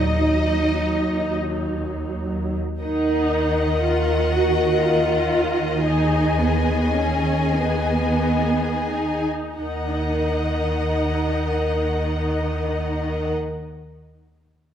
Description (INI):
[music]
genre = classical, slow romantic movement for string orchestra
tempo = 27-43 BPM (dotted quarters)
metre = 6/8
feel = rubato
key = Eb minor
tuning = A4 = 441 Hz
[part]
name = rich studio violin section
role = melody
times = 0.0-13.3 s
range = Eb5 to Ab5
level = -31 LUFS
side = left 3 dB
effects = none
[part]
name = warm studio violin section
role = second line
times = 0.0-13.3 s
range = Ab4 to Eb5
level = -25 LUFS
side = left 3 dB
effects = none
[part]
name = warm studio viola section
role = accompaniment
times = 0.0-13.3 s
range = Gb3 to Gb4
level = -24 LUFS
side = right 2 dB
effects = none
[part]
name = rich studio cello section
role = bass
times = 0.0-13.3 s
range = Eb3 to Eb4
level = -27 LUFS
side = right 1 dB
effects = none
[part]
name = rich studio double bass section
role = bass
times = 0.0-13.3 s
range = Eb2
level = -26 LUFS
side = right 1 dB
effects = none
[sound]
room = wet recital hall reverb, RT60 1.5 s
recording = recorded in a church or concert hall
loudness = -19 LUFS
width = side -9 dB against mid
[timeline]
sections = 0.0-2.8 A section; 2.8-9.6 B section; 9.6-13.5 C section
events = slowing down 1.4-9.6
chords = 0.0 Ebm; 5.8 Abm/Eb; 9.6 Ebm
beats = 1.36 | 2.81 4.30 | 5.84 7.54 | 9.60 11.59